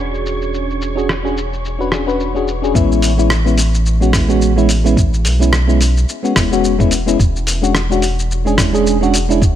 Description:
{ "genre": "sunset chillout", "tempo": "108 BPM", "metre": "4/4", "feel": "swing 57% on 16ths", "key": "A major", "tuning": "A4 = 440 Hz", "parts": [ { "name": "mellow FM electric piano", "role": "accompaniment", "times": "0.0-9.4 s", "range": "G#3 to B4", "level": "-16 LUFS", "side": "moving between left 7 dB and right 6 dB", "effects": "chorus, auto-pan, ping-pong delay" }, { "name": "warm sub bass", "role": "bass", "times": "0.0-9.6 s", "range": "E1 to B1", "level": "-17 LUFS", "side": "equal", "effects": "none" }, { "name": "wind-like tuned noise texture", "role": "texture", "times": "0.0-2.8 s", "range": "C#5 to C#6", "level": "-30 LUFS", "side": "right 4 dB", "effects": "built-in reverb" }, { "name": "dusty soul sampler-style drum kit", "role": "drums", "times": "0.1-9.5 s", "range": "hi-hat, rim click, shaker", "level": "-20 LUFS", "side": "equal", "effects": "low-pass filter on perc, low-pass filter on snare, low-pass filter on hats" }, { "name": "electronic kick drum", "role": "drums", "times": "2.8-9.5 s", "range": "none", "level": "-15 LUFS", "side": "equal", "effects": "none" } ], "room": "light reverb, digital ambience", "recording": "none", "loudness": "-12 LUFS", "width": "side -11 dB against mid", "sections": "0.0-2.7 A section; 2.7-9.6 B section", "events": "filter sweep on FM electric piano 0.0-2.7", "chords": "0.0 E13; 2.7 Amaj7; 7.2 E13", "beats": "| 0.53 1.08 1.64 2.19 | 2.75 3.30 3.86 4.42 | 4.97 5.53 6.08 6.64 | 7.19 7.75 8.30 8.86 | 9.41" }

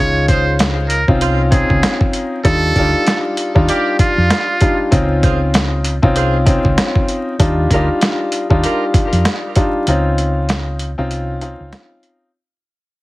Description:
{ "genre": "hip hop, boom-bap hip-hop", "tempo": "97 BPM", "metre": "4/4", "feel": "swing 59% on 16ths", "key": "Db major", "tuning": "A4 = 440 Hz", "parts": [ { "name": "trumpet with metal mute", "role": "melody", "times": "0.0-4.9 s", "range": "F4 to Db5", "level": "-19 LUFS", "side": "right 2 dB", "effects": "high-pass filter, low-pass filter, ping-pong delay" }, { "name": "warm upright piano", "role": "accompaniment", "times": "0.0-12.3 s", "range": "G3 to F4", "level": "-18 LUFS", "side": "left 1 dB", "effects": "cassette tape, high-pass filter, low-pass filter" }, { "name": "hollow-body short-scale fingered electric bass", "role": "bass", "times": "0.0-11.7 s", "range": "C2 to F2", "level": "-17 LUFS", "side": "equal", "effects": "none" }, { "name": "warm saxophone section", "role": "stabs", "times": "0.3-8.8 s", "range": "F4 to D5", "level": "-26 LUFS", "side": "right 2 dB", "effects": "high-pass filter, low-pass filter, ping-pong delay" }, { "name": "dusty soul sampler-style drum kit", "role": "drums", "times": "0.3-12.2 s", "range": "hi-hat, kick drum, snare drum", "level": "-16 LUFS", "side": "equal", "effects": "overdrive" } ], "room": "light reverb", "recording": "heavily compressed radio sound, multiband compression, vinyl crackle", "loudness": "-13 LUFS", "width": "side -19 dB against mid", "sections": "0.0-9.9 A section; 9.9-12.3 B section", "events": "break 9.9-12.3; fade-out 9.9-12.3", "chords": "0.0 Dbmaj9; 2.4 Ebmaj9; 4.9 Dbmaj9; 7.4 Ebmaj9; 9.9 Dbmaj9", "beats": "0.59 1.21 1.83 | 2.45 3.07 3.68 4.30 | 4.92 5.54 6.16 6.78 | 7.40 8.01 8.63 9.25 | 9.87 10.49 11.11 11.73" }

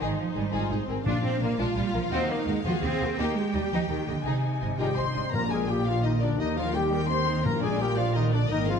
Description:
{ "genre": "cinematic, heroic adventure film score", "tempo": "114 BPM (dotted quarters)", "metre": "6/8", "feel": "straight", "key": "Bb mixolydian", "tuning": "A4 = 440 Hz", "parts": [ { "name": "clear symphonic violin section", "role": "melody", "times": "0.0-8.8 s", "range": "C5 to C6", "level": "-37 LUFS", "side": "left 6 dB", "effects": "none" }, { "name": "warm symphonic violin section", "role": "second line", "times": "0.0-8.8 s", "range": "D4 to C6", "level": "-34 LUFS", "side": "left 4 dB", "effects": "none" }, { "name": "warm symphonic viola section", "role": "accompaniment", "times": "0.0-8.8 s", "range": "Bb3 to D5", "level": "-33 LUFS", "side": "right 1 dB", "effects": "none" }, { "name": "rich symphonic cello section", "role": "bass", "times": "0.0-8.8 s", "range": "Ab2 to D4", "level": "-30 LUFS", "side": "right 2 dB", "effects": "none" }, { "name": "warm symphonic double bass section", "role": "bass", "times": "0.0-8.8 s", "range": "Ab1 to Eb2", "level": "-32 LUFS", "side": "right 3 dB", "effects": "none" }, { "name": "timpani", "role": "percussion", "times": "1.1-1.6, 5.3-7.9 s", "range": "Bb2", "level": "-33 LUFS", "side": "left 3 dB", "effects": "none" }, { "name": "mellow concert flute", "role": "second line", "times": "4.8-8.8 s", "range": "D5 to C6", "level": "-37 LUFS", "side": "left 5 dB", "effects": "none" }, { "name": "warm clarinet", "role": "second line", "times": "4.8-8.8 s", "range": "D4 to C5", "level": "-32 LUFS", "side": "left 2 dB", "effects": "none" }, { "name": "mellow French horn section", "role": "sustained chords", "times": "4.8-8.8 s", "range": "D3 to C4", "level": "-33 LUFS", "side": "left 4 dB", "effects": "none" } ], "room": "moderate recital hall reverb, RT60 1.5 s", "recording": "dark, warm production", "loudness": "-24 LUFS", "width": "side -6 dB against mid", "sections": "0.0-5.3 A section; 5.3-8.8 A section", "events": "none", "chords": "0.0 Ab; 1.1 Bb; 2.1 Ebmadd9; 3.2 Eb; 4.2 Ab; 5.3 Bb; 6.4 Eb; 7.4 Bb", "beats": "| 0.01 0.54 | 1.06 1.59 | 2.12 2.64 | 3.17 3.71 | 4.24 4.79 | 5.33 5.86 | 6.39 6.92 | 7.45 7.98 | 8.50" }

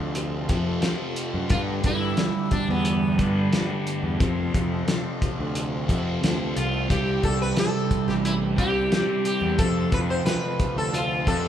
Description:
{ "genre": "psychedelic rock", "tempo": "89 BPM", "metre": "4/4", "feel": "straight", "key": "unclear", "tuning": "A4 = 439 Hz", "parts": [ { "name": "overdriven tonewheel organ", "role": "sustained chords", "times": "0.0-11.5 s", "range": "F3 to A4", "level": "-36 LUFS", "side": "right 2 dB", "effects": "none" }, { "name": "fuzz guitar", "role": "riff", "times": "0.0-11.5 s", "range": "F2 to C4", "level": "-27 LUFS", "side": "right 1 dB", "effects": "distortion, phaser" }, { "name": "fuzz picked electric bass", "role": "bass", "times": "0.0-11.5 s", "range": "A1 to G2", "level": "-28 LUFS", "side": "equal", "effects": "overdrive" }, { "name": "cloth-damped thuddy drum kit", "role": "drums", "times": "0.1-11.4 s", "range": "hi-hat, kick drum, snare drum", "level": "-26 LUFS", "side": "left 1 dB", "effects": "none" }, { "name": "sitar", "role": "melody", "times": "1.5-11.5 s", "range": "B3 to C5", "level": "-27 LUFS", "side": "equal", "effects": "none" } ], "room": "moderate large studio reverb, RT60 1.4 s", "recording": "band playing live in one room", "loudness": "-22 LUFS", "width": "side -10 dB against mid", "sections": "0.0-11.5 A section", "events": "none", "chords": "0.0 F; 1.5 Gadd9; 4.2 F; 6.9 Cadd9; 9.6 F", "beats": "0.16 0.84 | 1.51 2.18 2.86 3.53 | 4.20 4.88 5.55 6.22 | 6.90 7.57 8.24 8.91 | 9.58 10.25 10.92" }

